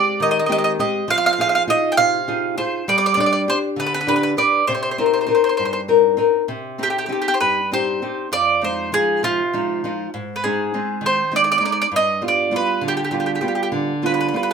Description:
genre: italian folk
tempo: 67 BPM (dotted quarters)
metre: 6/8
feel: straight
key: C minor, C harmonic minor from 6.5 s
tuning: A4 = 440 Hz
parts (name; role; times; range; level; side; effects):
- mandolin; melody; 0.0-14.5 s; F4 to G5; -18 LUFS; right 2 dB; none
- nylon-string guitar; accompaniment; 0.0-14.5 s; F2 to D5; -21 LUFS; left 3 dB; none
room: moderate studio reverb, RT60 0.6 s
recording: minimal, uncompressed stereo recording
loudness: -17 LUFS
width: side -6 dB against mid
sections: 0.0-6.5 A section; 6.5-14.5 B section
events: none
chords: 0.0 Abmaj7/Eb; 1.1 Fm7; 2.9 G; 4.7 Cm7; 6.5 Cm; 8.3 Fm7; 10.1 Ab; 11.9 G7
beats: 0.21 | 1.11 2.00 | 2.90 3.79 | 4.69 5.59 | 6.50 7.41 | 8.31 9.22 | 10.12 11.02 | 11.91 12.82 | 13.73

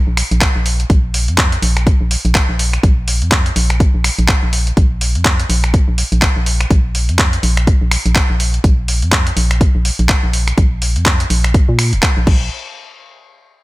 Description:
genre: deep house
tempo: 124 BPM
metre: 4/4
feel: swing 58% on 16ths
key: unclear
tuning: A4 = 442 Hz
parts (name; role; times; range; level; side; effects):
- organ-like FM bass; bass; 0.1-12.5 s; F1 to Bb2; -16 LUFS; equal; sidechain pumping
- dusty soul sampler-style drum kit; drums; 0.2-12.4 s; crash cymbal, finger snaps, handclaps, hi-hat; -18 LUFS; equal; none
- electronic kick drum; drums; 0.4-12.4 s; none; -13 LUFS; equal; overdrive
room: little or no reverb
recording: none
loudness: -12 LUFS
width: side -20 dB against mid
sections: 0.0-12.5 A section; 12.5-13.6 B section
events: none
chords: none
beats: 0.41 | 0.90 1.38 1.87 2.35 | 2.83 3.32 3.80 4.29 | 4.77 5.25 5.74 6.22 | 6.71 7.19 7.67 8.16 | 8.64 9.12 9.61 10.09 | 10.58 11.06 11.54 12.03

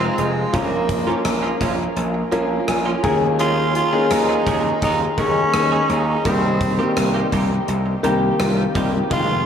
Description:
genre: 1980s-style pop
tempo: 84 BPM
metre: 4/4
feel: straight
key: unclear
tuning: A4 = 438 Hz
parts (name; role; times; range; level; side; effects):
- raspy tenor saxophone; melody; 0.0-9.5 s; Ab3 to F4; -23 LUFS; right 1 dB; shimmer reverb, tape echo
- clear grand piano; accompaniment; 0.0-9.5 s; Eb3 to Bb5; -21 LUFS; left 2 dB; shimmer reverb
- direct-recorded clean electric guitar; riff; 0.0-9.3 s; Eb3 to Ab4; -27 LUFS; right 4 dB; analog chorus, shimmer reverb, tape echo
- gritty slap bass; bass; 0.0-9.5 s; F1 to Eb2; -23 LUFS; equal; overdrive
- gated 80s drum kit; drums; 0.2-9.3 s; hi-hat, kick drum, rim click; -27 LUFS; equal; none
room: wet cathedral reverb, RT60 5.0 s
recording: dreamy mix soaked in reverb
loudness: -17 LUFS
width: side -8 dB against mid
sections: 0.0-9.5 A section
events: grand piano fill 2.0-3.4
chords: 0.0 Fm7; 0.5 Bbm; 3.0 Eb7sus4; 6.3 Cm7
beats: | 0.54 1.25 1.97 2.68 | 3.40 4.11 4.82 5.54 | 6.25 6.97 7.68 8.39 | 9.11

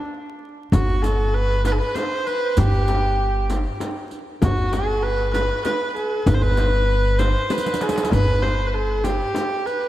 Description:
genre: Persian modal ensemble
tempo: 97 BPM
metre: 3/4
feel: straight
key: G dastgah chahargah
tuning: A4 = 440 Hz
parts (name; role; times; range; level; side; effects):
- rich kamancheh; melody; 0.0-9.9 s; F#4 to C5; -23 LUFS; right 1 dB; diffuse ambient delay
- upright bass; bass; 0.7-9.2 s; G1; -21 LUFS; equal; none
- frame drum; percussion; 0.7-9.5 s; none; -28 LUFS; left 3 dB; none
- riq; percussion; 0.7-9.7 s; none; -35 LUFS; right 4 dB; none
- tombak; percussion; 0.7-9.7 s; none; -29 LUFS; equal; none
room: moderate lush hall reverb, RT60 2.6 s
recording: dreamy mix soaked in reverb, vinyl crackle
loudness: -18 LUFS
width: side -14 dB against mid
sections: 0.7-9.9 A section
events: break 0.1-0.7; drum fill 7.5-8.1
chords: none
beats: 0.11 | 0.72 1.34 1.96 | 2.58 3.19 3.81 | 4.42 5.04 5.66 | 6.27 6.89 7.50 | 8.12 8.74 9.35

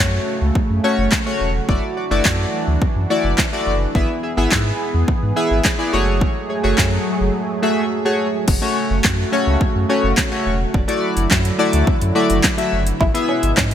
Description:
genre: dance-pop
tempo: 106 BPM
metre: 4/4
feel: straight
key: F# minor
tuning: A4 = 440 Hz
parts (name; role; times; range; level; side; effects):
- chorused retro synth keys; accompaniment; 0.0-13.5 s; A3 to E5; -20 LUFS; left 2 dB; sidechain pumping
- chorused pulse-width pad; sustained chords; 0.1-13.7 s; B2 to G#4; -24 LUFS; right 2 dB; sidechain pumping
- warm sub bass; bass; 0.0-13.7 s; E1 to G#2; -20 LUFS; equal; sidechain pumping
- pop drum kit; drums; 0.0-13.7 s; crash cymbal, handclaps, hi-hat, kick drum, snare drum; -19 LUFS; equal; overdrive
- direct-recorded clean electric guitar; riff; 13.0-13.7 s; C#4 to E4; -24 LUFS; right 2 dB; lush chorus
room: moderate lush hall reverb, RT60 2.3 s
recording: bright 1980s-style digital production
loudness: -15 LUFS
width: side -10 dB against mid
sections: 0.0-8.5 A section; 8.5-13.7 B section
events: drums muted 7.3-8.5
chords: 0.0 F#m; 1.7 Dadd9/F#; 4.0 E/G#; 5.9 F#madd9; 8.5 F#m; 10.7 Dadd9/F#; 13.0 E/G#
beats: 0.55 1.12 | 1.69 2.25 2.82 3.38 | 3.95 4.52 5.08 5.65 | 6.21 6.78 7.35 7.91 | 8.48 9.04 9.61 10.18 | 10.74 11.31 11.88 12.44 | 13.01 13.57

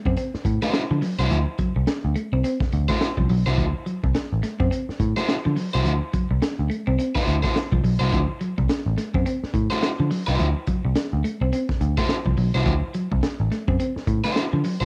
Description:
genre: funk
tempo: 106 BPM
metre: 4/4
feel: swing 60% on 16ths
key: D mixolydian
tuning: A4 = 435 Hz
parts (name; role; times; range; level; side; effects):
- semi-hollow electric guitar; riff; 0.1-14.8 s; F3 to C4; -30 LUFS; equal; spring reverb
- vintage muted picked electric bass; bass; 0.1-14.8 s; A1 to D3; -24 LUFS; equal; none
- crunchy breakbeat drum kit; drums; 0.1-14.8 s; hi-hat, kick drum, snare drum; -29 LUFS; equal; cassette tape
- overdriven semi-hollow guitar; accompaniment; 0.6-14.8 s; E4 to C5; -29 LUFS; equal; spring reverb
room: little or no reverb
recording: home recording on cassette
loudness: -23 LUFS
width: mono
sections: 0.0-14.8 A section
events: none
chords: 0.0 D9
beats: 0.17 0.74 | 1.30 1.87 2.44 3.01 | 3.58 4.15 4.71 5.28 | 5.85 6.42 6.99 7.55 | 8.12 8.69 9.26 9.82 | 10.39 10.96 11.52 12.09 | 12.66 13.22 13.79 14.36

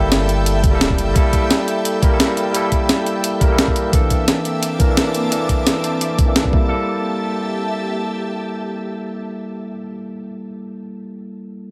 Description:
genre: liquid drum and bass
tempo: 173 BPM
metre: 4/4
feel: swing 53% on 16ths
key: G dorian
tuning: A4 = 440 Hz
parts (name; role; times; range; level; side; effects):
- barky tine electric piano; accompaniment; 0.0-11.7 s; E3 to Bb4; -24 LUFS; equal; low-pass filter, digital delay
- ethereal airy pad; sustained chords; 0.0-9.7 s; Bb3 to D6; -28 LUFS; equal; ensemble chorus, built-in reverb, sidechain pumping
- warm sub bass; bass; 0.0-1.1 s; D1 to G1; -22 LUFS; equal; none
- breakbeat sampler-style drum kit; drums; 0.1-6.4 s; hi-hat, snare drum; -21 LUFS; equal; none
- electronic kick drum; drums; 0.6-6.6 s; none; -19 LUFS; equal; none
room: light reverb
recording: none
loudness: -18 LUFS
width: mono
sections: 0.0-6.7 A section; 6.7-9.5 B section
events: filter sweep on tine electric piano 0.0-6.7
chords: 0.0 Gm69; 3.9 C13; 6.5 Gm69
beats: 0.12 0.46 0.81 | 1.16 1.50 1.85 2.20 | 2.54 2.89 3.24 3.58 | 3.93 4.28 4.62 4.97 | 5.32 5.66 6.01 6.36 | 6.70 7.05 7.40 7.75 | 8.09 8.44 8.79 9.13

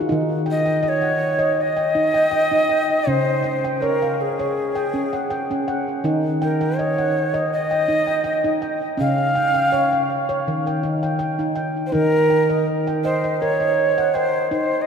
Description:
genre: world meditative, meditative tuned percussion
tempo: 81 BPM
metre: 4/4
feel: straight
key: unclear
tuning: A4 = 440 Hz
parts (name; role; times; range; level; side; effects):
- handpan; arpeggios; 0.0-14.9 s; Db3 to G5; -21 LUFS; equal; ping-pong delay
- breathy Native American-style cedar flute; melody; 0.5-14.9 s; Ab4 to F5; -20 LUFS; right 1 dB; ping-pong delay
room: wet cathedral reverb, RT60 5.3 s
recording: in a vast, echoing space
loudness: -18 LUFS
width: side -6 dB against mid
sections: 0.1-11.9 A section; 11.9-14.9 B section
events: none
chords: 0.1 Ebm; 3.1 Db; 6.0 Ebm; 9.0 Db; 10.5 Eb; 11.9 Ebm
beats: | 0.11 0.85 1.59 2.33 | 3.07 3.81 4.55 5.29 | 6.03 6.77 7.51 8.25 | 8.99 9.73 10.46 11.20 | 11.94 12.67 13.41 14.14

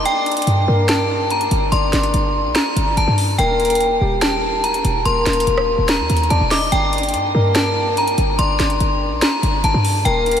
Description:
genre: hip hop, trap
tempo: 144 BPM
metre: 4/4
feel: half-time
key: G minor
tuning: A4 = 443 Hz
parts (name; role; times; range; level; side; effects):
- soft octave-layered synth lead; second line; 0.0-10.4 s; G4 to Eb5; -22 LUFS; left 2 dB; chorus, ping-pong delay
- short 808-style bass; bass; 0.0-10.4 s; D1 to G2; -19 LUFS; equal; none
- metallic FM bell; melody; 0.1-10.4 s; G5 to D6; -19 LUFS; equal; chorus, ping-pong delay
- trap drum kit; drums; 0.1-10.4 s; hi-hat, rim click, snare drum; -22 LUFS; equal; none
room: wet huge ambient reverb, RT60 7.0 s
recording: dreamy mix soaked in reverb, vinyl crackle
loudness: -15 LUFS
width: side -9 dB against mid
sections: 0.0-10.4 A section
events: break 0.1-0.5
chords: 0.1 Gm; 3.4 Eb; 6.7 Gm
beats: | 0.06 0.47 0.89 1.30 | 1.72 2.14 2.56 2.97 | 3.39 3.81 4.22 4.64 | 5.05 5.47 5.89 6.30 | 6.72 7.14 7.55 7.97 | 8.39 8.80 9.22 9.64 | 10.05

